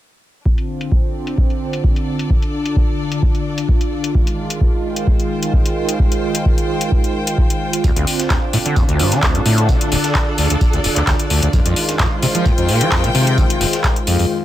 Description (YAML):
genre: acid house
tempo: 130 BPM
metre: 4/4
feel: swing 53% on 16ths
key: D phrygian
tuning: A4 = 441 Hz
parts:
  - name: warm analog pad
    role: sustained chords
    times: 0.5-14.4 s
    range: D3 to F4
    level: -22 LUFS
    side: right 1 dB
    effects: chorus, tremolo, sidechain pumping
  - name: electronic kick drum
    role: drums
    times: 0.5-13.9 s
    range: none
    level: -16 LUFS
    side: equal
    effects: none
  - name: clear studio string section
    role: texture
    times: 0.5-14.3 s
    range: D4 to G5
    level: -25 LUFS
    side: left 1 dB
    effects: sidechain pumping
  - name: electro analog drum machine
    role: drums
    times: 0.6-14.3 s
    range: handclaps, hi-hat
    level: -21 LUFS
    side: left 2 dB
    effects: low-pass filter on hats, low-pass filter on snare, low-pass filter on room
  - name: overdriven acid bass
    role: riff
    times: 7.8-14.3 s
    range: D1 to F3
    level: -18 LUFS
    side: equal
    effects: tube saturation, lush chorus, cassette tape, sidechain pumping, ping-pong delay
  - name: breakbeat sampler-style drum kit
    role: drums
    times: 7.8-14.2 s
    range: hi-hat, snare drum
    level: -30 LUFS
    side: right 2 dB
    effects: sidechain pumping on hats, high-pass filter on hats, high-pass filter on snare
room: light reverb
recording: none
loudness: -14 LUFS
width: side -13 dB against mid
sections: 0.5-14.4 A section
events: fade-in on string section 0.5-14.4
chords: 0.5 Dm7; 4.1 Fm7; 7.8 Dm7; 11.5 Fm7